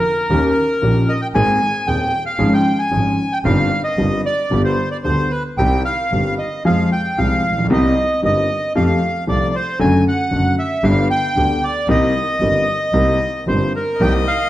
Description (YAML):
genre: tango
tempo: 114 BPM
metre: 4/4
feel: rubato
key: C minor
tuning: A4 = 438 Hz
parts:
  - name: bandoneon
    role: melody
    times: 0.0-14.5 s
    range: Bb4 to Ab5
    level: -19 LUFS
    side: equal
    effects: none
  - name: warm concert grand piano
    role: accompaniment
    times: 0.3-14.2 s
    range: Eb1 to Ab4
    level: -18 LUFS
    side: left 1 dB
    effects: none
  - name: clear double bass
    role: bass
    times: 0.3-14.2 s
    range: F#1 to F2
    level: -22 LUFS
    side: right 1 dB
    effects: none
  - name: warm violin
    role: second line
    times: 14.0-14.5 s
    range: Eb5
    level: -23 LUFS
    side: left 5 dB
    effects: none
room: wet recital hall reverb, RT60 1.3 s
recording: faint mains hum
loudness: -15 LUFS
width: side -14 dB against mid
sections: 0.0-14.5 A section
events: none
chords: 0.3 Eb7; 1.3 Abadd9; 2.4 Db/Ab; 3.5 Cm/G; 4.5 G; 5.6 Cm; 6.7 Fm; 7.7 Cm7; 8.8 Fadd9; 9.8 D/F#; 10.8 G; 11.9 Cm7